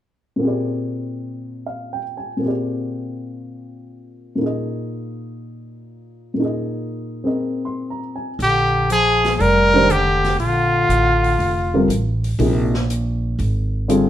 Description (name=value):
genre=modal jazz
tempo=120 BPM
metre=4/4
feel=swing 69% on 8ths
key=Bb mixolydian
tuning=A4 = 441 Hz
part: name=dark baby grand piano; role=accompaniment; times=0.4-14.1 s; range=Bb2 to C6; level=-21 LUFS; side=equal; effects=none
part: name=brilliant trumpet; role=melody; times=8.4-11.9 s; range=F4 to Bb4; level=-16 LUFS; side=equal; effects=none
part: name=warm bass clarinet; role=second line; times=8.4-11.9 s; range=D3 to G3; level=-23 LUFS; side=left 4 dB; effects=none
part: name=upright bass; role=bass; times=8.4-14.1 s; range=F1 to Bb1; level=-20 LUFS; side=right 1 dB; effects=none
part: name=open jazz drum kit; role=drums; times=8.4-14.1 s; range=hi-hat, snare drum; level=-32 LUFS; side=equal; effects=none
room=moderate stone room reverb, RT60 0.9 s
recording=band playing live in one room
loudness=-17 LUFS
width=side -11 dB against mid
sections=0.4-8.4 A section; 8.4-14.1 B section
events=none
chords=0.4 Bb13; 4.4 Absus2/Bb; 8.4 Bb6; 12.4 Absus2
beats=| 0.42 0.92 1.42 1.92 | 2.42 2.92 3.41 3.91 | 4.41 4.91 5.41 5.91 | 6.40 6.90 7.40 7.90 | 8.40 8.90 9.40 9.89 | 10.39 10.89 11.39 11.89 | 12.39 12.89 13.39 13.88